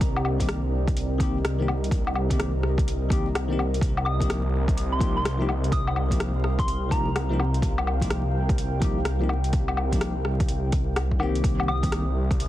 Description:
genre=future garage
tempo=126 BPM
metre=4/4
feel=swing 64% on 16ths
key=unclear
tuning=A4 = 439 Hz
part: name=deep dark ambient pad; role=sustained chords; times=0.0-12.5 s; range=C4 to G5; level=-33 LUFS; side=equal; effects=chorus, built-in reverb, sidechain pumping
part: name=swelling detuned saw bass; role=bass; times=0.0-12.5 s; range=C2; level=-26 LUFS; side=equal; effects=sidechain pumping
part: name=deep house drum kit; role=drums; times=0.0-12.5 s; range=hi-hat, rim click, woodblock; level=-30 LUFS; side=left 2 dB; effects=overdrive, small room ambience
part: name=electronic kick drum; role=drums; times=0.0-12.4 s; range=none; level=-26 LUFS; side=equal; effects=overdrive, small room ambience
part: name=bell-like tine electric piano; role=accompaniment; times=0.4-12.0 s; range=Eb3 to G4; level=-32 LUFS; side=left 2 dB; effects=phaser, sidechain pumping, tape echo
part: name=soft synth bell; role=melody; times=4.1-7.6, 11.7-11.9 s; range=Bb5 to Eb6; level=-33 LUFS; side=equal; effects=chorus, vintage 12-bit sampler grit, analog delay
room=little or no reverb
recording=dense, heavily limited modern master, vinyl crackle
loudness=-22 LUFS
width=side -14 dB against mid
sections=0.0-11.4 A section; 11.4-12.5 A section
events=none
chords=0.0 Cm7; 3.8 Ebadd9/C; 11.4 Cm7

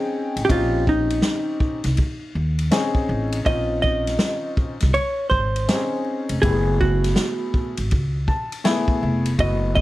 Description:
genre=hip hop, jazz-hop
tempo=81 BPM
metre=4/4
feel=swing 64% on 16ths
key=unclear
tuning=A4 = 440 Hz
part: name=vintage hollow-body jazz guitar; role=melody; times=0.0-9.8 s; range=Eb4 to Eb5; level=-24 LUFS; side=right 1 dB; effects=none
part: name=warm upright piano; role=accompaniment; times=0.0-9.8 s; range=A3 to A5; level=-25 LUFS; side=left 2 dB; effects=none
part: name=upright bass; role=bass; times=0.4-9.8 s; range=F1 to Eb2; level=-23 LUFS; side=equal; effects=none
part: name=vintage drum kit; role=drums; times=0.4-9.8 s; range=hi-hat, kick drum, ride cymbal, snare drum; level=-23 LUFS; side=equal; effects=none
room=light reverb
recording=vinyl crackle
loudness=-19 LUFS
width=side -16 dB against mid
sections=0.0-9.8 A section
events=upright piano fill 7.9-9.4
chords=0.0 Bbm11; 6.4 Gbm11

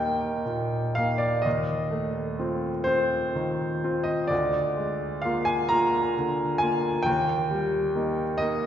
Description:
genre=classical, romantic nocturne for solo piano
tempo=37-45 BPM (dotted quarters)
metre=12/8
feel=rubato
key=Eb major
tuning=A4 = 440 Hz
part: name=clear grand piano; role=solo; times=0.0-8.7 s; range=D2 to Bb5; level=-24 LUFS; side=equal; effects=none
room=wet church reverb, RT60 2.4 s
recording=recorded in a church or concert hall, nothing above 7.5 kHz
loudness=-24 LUFS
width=side -9 dB against mid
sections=0.0-8.7 A section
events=none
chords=0.0 Eb; 1.5 F7/Eb; 4.3 Bb7/D; 7.1 Eb

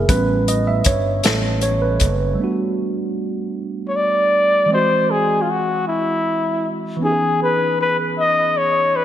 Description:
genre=slow six-eight R&B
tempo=52 BPM (dotted quarters)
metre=6/8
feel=straight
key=unclear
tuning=A4 = 440 Hz
part: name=tine electric piano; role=accompaniment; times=0.0-9.0 s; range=E3 to E5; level=-22 LUFS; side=right 3 dB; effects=analog chorus
part: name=smooth synth bass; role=bass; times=0.0-2.4 s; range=F#1 to A1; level=-21 LUFS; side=equal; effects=none
part: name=warm soul drum kit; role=drums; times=0.1-2.2 s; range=hi-hat, kick drum, snare drum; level=-18 LUFS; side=left 1 dB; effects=none
part: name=breathy flugelhorn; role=melody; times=3.9-9.0 s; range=E4 to D#5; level=-16 LUFS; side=left 2 dB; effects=none
room=wet lush hall reverb, RT60 2.1 s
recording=bright 1980s-style digital production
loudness=-16 LUFS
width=side -11 dB against mid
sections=0.0-2.4 A section; 2.4-9.0 B section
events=tine electric piano solo 0.0-2.4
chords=0.1 A9; 2.4 Gmaj7; 4.7 G#7b13; 7.0 C#m9

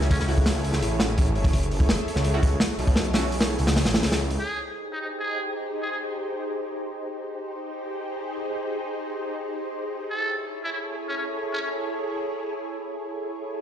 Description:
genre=drum and bass, jungle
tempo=168 BPM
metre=4/4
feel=straight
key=unclear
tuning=A4 = 440 Hz
part: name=soft string machine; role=sustained chords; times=0.0-13.6 s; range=Eb4 to Db5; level=-30 LUFS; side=equal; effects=ensemble chorus, vintage 12-bit sampler grit
part: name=detuned saw bass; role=bass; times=0.0-4.4 s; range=Gb1 to Db2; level=-25 LUFS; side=equal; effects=none
part: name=crunchy breakbeat drum kit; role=drums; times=0.0-4.4 s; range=hi-hat, kick drum, snare drum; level=-23 LUFS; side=equal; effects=none
part: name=trumpet with metal mute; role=melody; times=0.1-0.3, 4.4-6.0, 10.1-11.7 s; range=C#4 to A4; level=-31 LUFS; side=right 1 dB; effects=dub echo
part: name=orchestra-hit-like synth stab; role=stabs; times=0.3-3.2 s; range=A3 to Gb4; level=-33 LUFS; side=right 2 dB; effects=built-in reverb, dub echo
room=light reverb, small room reverb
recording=played on a big sound system in a bare room, stone room reverb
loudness=-24 LUFS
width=side -10 dB against mid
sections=0.0-4.4 A section; 4.4-13.6 B section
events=none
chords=0.0 Gbm7; 4.4 Abmaj7/Eb; 10.1 Amaj7/C#

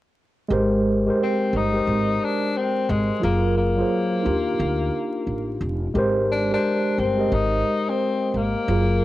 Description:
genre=lo-fi hip hop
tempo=88 BPM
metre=4/4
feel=swing 65% on 16ths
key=Ab lydian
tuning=A4 = 439 Hz
part: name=mellow tine electric piano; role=accompaniment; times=0.5-9.0 s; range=Gb3 to Eb5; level=-22 LUFS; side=right 1 dB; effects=medium stereo tremolo, low-pass filter, cassette tape
part: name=upright bass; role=bass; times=0.5-9.0 s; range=F1 to Eb2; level=-25 LUFS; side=equal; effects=none
part: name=clear tenor saxophone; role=melody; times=1.2-9.0 s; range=Ab3 to Eb4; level=-25 LUFS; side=left 4 dB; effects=low-pass filter, cassette tape
room=moderate spring reverb, RT60 1.8 s, small room ambience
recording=home recording on cassette, vinyl crackle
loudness=-20 LUFS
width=side -16 dB against mid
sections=0.5-9.0 A section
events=none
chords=0.5 Abmaj9; 3.2 Gbmaj9; 4.3 Ebmaj9; 6.0 Abmaj9

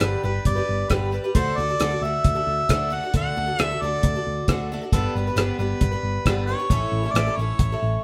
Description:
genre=folk rock and heartland rock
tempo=135 BPM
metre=4/4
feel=straight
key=D major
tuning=A4 = 440 Hz
part: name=warm harmonica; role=melody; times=0.0-8.0 s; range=A4 to F#5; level=-29 LUFS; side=equal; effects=none
part: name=picked twelve-string acoustic guitar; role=accompaniment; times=0.0-8.0 s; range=G2 to B4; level=-30 LUFS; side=equal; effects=none
part: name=hollow-body short-scale picked electric bass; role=bass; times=0.0-8.0 s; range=G1 to D2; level=-29 LUFS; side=equal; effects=none
part: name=cloth-damped thuddy drum kit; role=drums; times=0.0-7.7 s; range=hi-hat, kick drum, rim click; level=-24 LUFS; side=equal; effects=none
room=moderate studio reverb, RT60 0.5 s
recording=band playing live in one room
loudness=-23 LUFS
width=mono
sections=0.0-8.0 A section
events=none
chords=0.0 G; 1.4 D; 4.9 G; 6.7 A

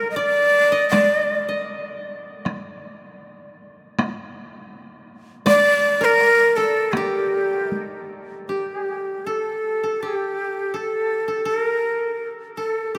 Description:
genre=japanese traditional, Japanese chamber music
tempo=76-84 BPM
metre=2/4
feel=rubato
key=G hirajoshi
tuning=A4 = 440 Hz
part: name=breathy bright shakuhachi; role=melody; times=0.0-1.6, 5.5-12.9 s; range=G4 to Eb5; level=-22 LUFS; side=equal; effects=none
part: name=koto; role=second line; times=0.0-3.0, 5.5-13.0 s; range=G4 to Eb5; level=-30 LUFS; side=equal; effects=none
part: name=taiko ensemble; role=percussion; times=0.9-7.9 s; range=none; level=-30 LUFS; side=equal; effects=none
room=wet cathedral reverb, RT60 6.8 s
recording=none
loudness=-21 LUFS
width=mono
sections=0.0-8.5 A section; 8.5-13.0 B section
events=none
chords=none

